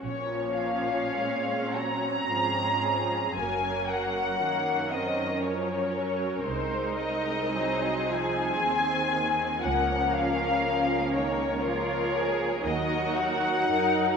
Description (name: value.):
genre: classical, slow romantic movement for string orchestra.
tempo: 50-61 BPM.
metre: 3/4.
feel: rubato.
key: Bb minor.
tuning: A4 = 443 Hz.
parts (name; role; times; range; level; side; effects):
muted studio violin section; melody; 0.0-14.2 s; Bb4 to Bb5; -28 LUFS; left 3 dB; none.
muted studio violin section; second line; 0.0-14.2 s; Bb3 to Db5; -30 LUFS; equal; none.
muted studio viola section; accompaniment; 0.0-14.2 s; Eb3 to Eb4; -32 LUFS; right 4 dB; none.
muted chamber cello section; bass; 0.0-14.2 s; C2 to Bb2; -37 LUFS; right 4 dB; none.
muted symphonic double bass section; bass; 0.0-13.7 s; Gb1 to Eb2; -38 LUFS; right 4 dB; none.
room: wet scoring stage reverb, RT60 1.9 s.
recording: minimal, uncompressed stereo recording.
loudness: -25 LUFS.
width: side -6 dB against mid.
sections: 0.0-14.2 A section.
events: none.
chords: 0.0 Bbm; 3.4 Gb; 6.5 Cm7b5; 9.6 Bbm/Db; 12.6 Ebm.